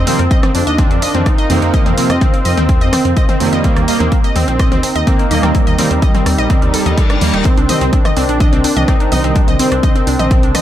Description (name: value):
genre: melodic techno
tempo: 126 BPM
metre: 4/4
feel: straight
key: unclear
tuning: A4 = 438 Hz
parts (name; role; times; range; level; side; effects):
- wide unison lead; melody; 0.0-10.6 s; G3 to Eb4; -19 LUFS; right 1 dB; sidechain pumping, digital delay
- dark analog pad; sustained chords; 0.0-10.6 s; C4 to Bb5; -24 LUFS; left 2 dB; chorus, sidechain pumping
- dark detuned saw bass; bass; 0.0-10.5 s; Eb1 to F2; -18 LUFS; equal; sidechain pumping
- wide unison pluck; arpeggios; 0.1-10.6 s; C4 to Eb5; -19 LUFS; equal; sidechain pumping, digital delay
- analog synth brass; stabs; 0.1-9.7 s; C3 to C4; -20 LUFS; right 4 dB; chorus, sidechain pumping, digital delay
- punchy analog drum machine; drums; 0.1-10.6 s; hi-hat, rim click, toms; -22 LUFS; left 1 dB; sidechain pumping on hats, sidechain pumping on toms
- electronic kick drum; drums; 0.3-10.4 s; none; -13 LUFS; equal; overdrive
- reverse cymbal; sound effects; 6.7-7.5 s; none; -24 LUFS; left 7 dB; none
room: digital ambience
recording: none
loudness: -10 LUFS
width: side -12 dB against mid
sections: 0.0-10.6 A section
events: reverse cymbal 6.7-7.5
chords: 0.0 Fsus4; 3.6 Eb; 7.5 Cm